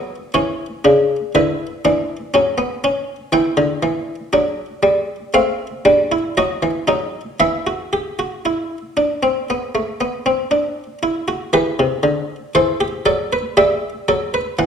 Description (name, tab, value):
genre	classical, baroque-style 3-part fugue for harpsichord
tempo	59 BPM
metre	4/4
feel	straight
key	E minor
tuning	A4 = 440 Hz
part	buff-stop harpsichord	solo	0.0-14.7 s	C3 to G5	-16 LUFS	equal	none
room	wet recital hall reverb, RT60 1.3 s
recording	dark, warm production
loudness	-16 LUFS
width	side -7 dB against mid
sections	0.0-11.5 A section; 11.5-14.7 B section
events	none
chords	0.0 Bmadd9 (rootless); 1.4 Bm/D; 3.4 Em; 5.4 F/A; 6.4 D#m; 7.4 N.C.; 11.5 Em